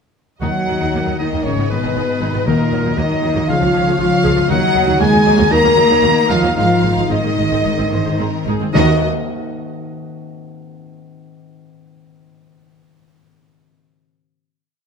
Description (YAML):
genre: cinematic, heroic adventure film score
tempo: 108-118 BPM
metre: 4/4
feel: straight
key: Eb minor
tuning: A4 = 445 Hz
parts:
  - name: warm symphonic violin section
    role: melody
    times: 0.4-9.1 s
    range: Bb4 to Bb5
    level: -23 LUFS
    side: left 4 dB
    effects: none
  - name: bright oboe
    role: second line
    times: 0.4-9.0 s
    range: Bb4 to Bb5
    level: -25 LUFS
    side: right 3 dB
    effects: none
  - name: mellow hollow flute section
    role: second line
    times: 0.4-9.0 s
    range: Bb4 to Bb5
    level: -24 LUFS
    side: equal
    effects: none
  - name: rich symphonic violin section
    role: second line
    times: 0.4-9.1 s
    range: Ab4 to F5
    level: -28 LUFS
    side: left 3 dB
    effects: none
  - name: rich symphonic viola section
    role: accompaniment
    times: 0.4-9.1 s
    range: Eb3 to Ab4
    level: -24 LUFS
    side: right 2 dB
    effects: none
  - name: dark French horn section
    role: sustained chords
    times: 0.4-9.0 s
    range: Bb3 to Bb4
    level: -19 LUFS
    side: left 3 dB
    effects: none
  - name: concert harp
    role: arpeggios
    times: 0.4-9.1 s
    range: Ab2 to Eb5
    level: -23 LUFS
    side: left 9 dB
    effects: none
  - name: rich studio cello section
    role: bass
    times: 0.4-9.1 s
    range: Bb2 to Bb3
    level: -20 LUFS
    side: right 3 dB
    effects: none
  - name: rich symphonic double bass section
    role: bass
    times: 0.4-9.0 s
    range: Ab1 to Eb2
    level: -22 LUFS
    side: right 5 dB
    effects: none
  - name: timpani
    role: percussion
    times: 0.4-3.2, 8.8-9.0 s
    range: Eb3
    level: -23 LUFS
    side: left 2 dB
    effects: none
room: moderate scoring stage reverb, RT60 2.0 s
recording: none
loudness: -13 LUFS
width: side -6 dB against mid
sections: 0.4-8.7 theme; 8.7-10.9 final chord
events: slowing down 3.5-8.7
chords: 0.4 Ebm; 1.4 Abm; 2.5 Ebm; 3.5 Db; 4.5 Ebm; 6.6 Abadd9; 8.7 Ebm